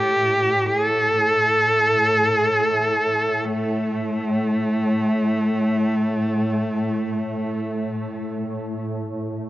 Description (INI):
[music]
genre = caucasian folk, Caucasian lament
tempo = free time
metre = none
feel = none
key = unclear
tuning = A4 = 439 Hz
[part]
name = clear cello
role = melody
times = 0.0-8.3 s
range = A3 to A4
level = -19 LUFS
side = equal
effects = cassette tape, tape echo
[part]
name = shimmering ambient pad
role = drone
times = 0.0-9.5 s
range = A2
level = -27 LUFS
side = equal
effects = chorus, built-in reverb, cassette tape
[sound]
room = light reverb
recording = home recording on cassette, nothing above 7.8 kHz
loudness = -19 LUFS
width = side -16 dB against mid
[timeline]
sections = 0.0-9.5 A section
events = none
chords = none